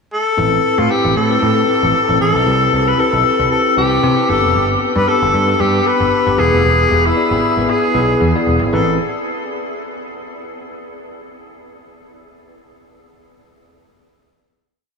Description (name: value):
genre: 1980s-style pop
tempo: 115 BPM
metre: 4/4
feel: swing 55% on 16ths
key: A minor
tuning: A4 = 441 Hz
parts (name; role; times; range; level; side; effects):
- breathy alto saxophone; melody; 0.1-9.0 s; E4 to B4; -16 LUFS; left 2 dB; analog delay
- tine electric piano; accompaniment; 0.4-9.0 s; B3 to D5; -19 LUFS; left 2 dB; medium tremolo
- picked electric bass; bass; 0.4-9.0 s; E1 to C3; -18 LUFS; right 1 dB; none
room: wet huge ambient reverb, RT60 8.1 s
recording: dreamy mix soaked in reverb, small room ambience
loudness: -12 LUFS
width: side -4 dB against mid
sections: 0.0-0.4 pickup bar; 0.4-8.7 verse; 8.7-10.8 final chord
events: none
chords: 0.4 Amadd9; 2.5 Cmaj7; 4.3 G; 6.4 E; 8.7 Amadd9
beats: | 0.38 0.90 1.42 1.94 | 2.46 2.99 3.51 4.03 | 4.55 5.07 5.59 6.12 | 6.64 7.16 7.68 8.20 | 8.72